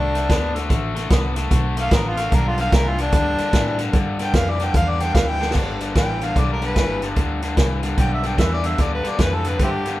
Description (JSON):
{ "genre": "electric blues shuffle", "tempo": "148 BPM", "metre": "4/4", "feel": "swing 64% on 8ths", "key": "G mixolydian", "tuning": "A4 = 441 Hz", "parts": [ { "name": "warm harmonica", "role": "melody", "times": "0.0-10.0 s", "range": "C4 to G5", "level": "-24 LUFS", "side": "equal", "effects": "overdrive" }, { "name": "overdriven electric guitar", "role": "riff", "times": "0.0-10.0 s", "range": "G2 to B3", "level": "-25 LUFS", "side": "left 3 dB", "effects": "none" }, { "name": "vintage muted fingered electric bass", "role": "bass", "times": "0.0-10.0 s", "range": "G1 to A2", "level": "-24 LUFS", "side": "equal", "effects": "none" }, { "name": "vintage drum kit", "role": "drums", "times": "0.1-9.9 s", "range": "crash cymbal, hi-hat, kick drum, snare drum", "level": "-21 LUFS", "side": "equal", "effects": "none" } ], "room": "light reverb", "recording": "band playing live in one room", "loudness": "-17 LUFS", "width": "side -16 dB against mid", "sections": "0.0-5.6 A section; 5.6-10.0 B section", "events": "harmonica solo 0.0-5.6; drum fill 5.4", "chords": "0.0 D5; 2.3 G" }